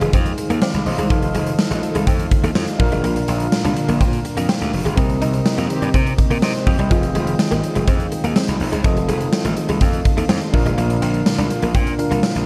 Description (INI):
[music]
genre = 1980s-style pop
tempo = 124 BPM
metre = 4/4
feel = straight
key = F dorian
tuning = A4 = 442 Hz
[part]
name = soft electric-piano-like synth keys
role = accompaniment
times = 0.0-12.5 s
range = Bb2 to G5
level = -27 LUFS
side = equal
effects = chorus
[part]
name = lush unison pad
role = sustained chords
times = 0.0-12.5 s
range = C3 to F4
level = -28 LUFS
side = equal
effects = chorus
[part]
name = direct-recorded clean electric guitar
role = riff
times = 0.0-12.4 s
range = F3 to Eb4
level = -29 LUFS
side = equal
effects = ensemble chorus, delay
[part]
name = gritty slap bass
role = bass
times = 0.0-12.4 s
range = F1 to C3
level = -25 LUFS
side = equal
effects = overdrive
[part]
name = big rock drum kit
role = drums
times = 0.0-12.5 s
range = hi-hat, kick drum, snare drum, tambourine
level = -22 LUFS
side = equal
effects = none
[part]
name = mellow synth brass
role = stabs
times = 5.7-5.9 s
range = Eb3 to G4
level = -30 LUFS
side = equal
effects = none
[sound]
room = light reverb, small room ambience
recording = dark, warm production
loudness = -18 LUFS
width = mono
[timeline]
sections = 0.0-12.5 A section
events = band accent 5.0-6.9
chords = 0.0 Fm7; 1.1 F7; 2.8 Bb; 5.0 Cm7; 6.9 Fm7; 8.8 F7; 10.5 Bb